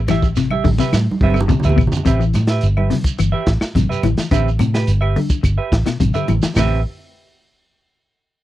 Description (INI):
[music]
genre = afrobeat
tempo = 106 BPM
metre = 4/4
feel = straight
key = A minor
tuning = A4 = 440 Hz
[part]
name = vintage muted fingered electric bass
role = bass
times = 0.0-6.8 s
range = G1 to A2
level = -17 LUFS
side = equal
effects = none
[part]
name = semi-hollow electric guitar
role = arpeggios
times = 0.1-6.7 s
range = A2 to E3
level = -21 LUFS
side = left 6 dB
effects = ensemble chorus
[part]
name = semi-hollow electric guitar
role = stabs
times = 0.1-6.8 s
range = C4 to E5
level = -22 LUFS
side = right 7 dB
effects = lush chorus
[part]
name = crunchy breakbeat drum kit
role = drums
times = 0.1-6.7 s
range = hi-hat, kick drum, ride cymbal, snare drum, toms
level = -20 LUFS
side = equal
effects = none
[part]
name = claves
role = percussion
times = 0.1-6.7 s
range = none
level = -32 LUFS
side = left 7 dB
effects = none
[part]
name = congas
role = percussion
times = 0.1-6.7 s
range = none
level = -23 LUFS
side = right 2 dB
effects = none
[part]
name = shekere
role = percussion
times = 0.1-6.7 s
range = none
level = -28 LUFS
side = right 3 dB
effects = none
[sound]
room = small room ambience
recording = dry, close 1970s-style studio recording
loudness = -14 LUFS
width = side -14 dB against mid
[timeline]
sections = 0.0-2.1 A section; 2.1-6.6 B section; 6.6-8.4 C section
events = drum fill 0.9-2.1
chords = 0.0 Am9